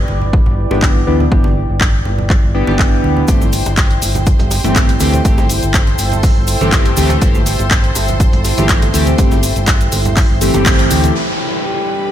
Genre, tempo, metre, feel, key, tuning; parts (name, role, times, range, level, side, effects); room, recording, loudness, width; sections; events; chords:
deep house; 122 BPM; 4/4; swing 54% on 16ths; A4 = 441 Hz
fingered electric bass; bass; 0.0-11.1 s; G1 to D2; -17 LUFS; equal; sidechain pumping
deep dark ambient pad; texture; 0.0-12.1 s; E4 to G5; -22 LUFS; right 1 dB; chorus, built-in reverb, sidechain pumping
congas and bongos; percussion; 0.1-11.1 s; -24 LUFS; right 3 dB
electronic kick drum; drums; 0.3-10.8 s; -14 LUFS; equal; small room reverb
chorused polysynth; stabs; 0.7-11.1 s; E3 to G4; -18 LUFS; equal; sidechain pumping, ping-pong delay
house drum kit; drums; 0.8-12.1 s; crash cymbal, handclaps, hi-hat; -20 LUFS; left 1 dB; low-pass filter on snare, small room reverb, low-pass filter on hats, low-pass filter on cymbals
dusty soul sampler-style drum kit; drums; 3.3-11.1 s; hi-hat, shaker, snare drum; -29 LUFS; right 1 dB
cabasa; percussion; 3.3-11.1 s; -27 LUFS; left 3 dB
bright studio violin section; texture; 3.3-12.1 s; B4 to C6; -28 LUFS; left 2 dB
hollow soft pad; sustained chords; 11.2-12.1 s; G3 to B5; -29 LUFS; left 3 dB; chorus, sidechain pumping
downlifter; sound effects; 11.2-12.1 s; -21 LUFS; equal
breathy flute-like synth lead; melody; 11.6-12.1 s; G4; -18 LUFS; equal; lush chorus, cassette tape
light reverb, digital ambience; -11 LUFS; side -11 dB against mid
0.0-11.2 A section
band accent 10.7
0.0 G6; 3.3 Am7/G; 11.2 G6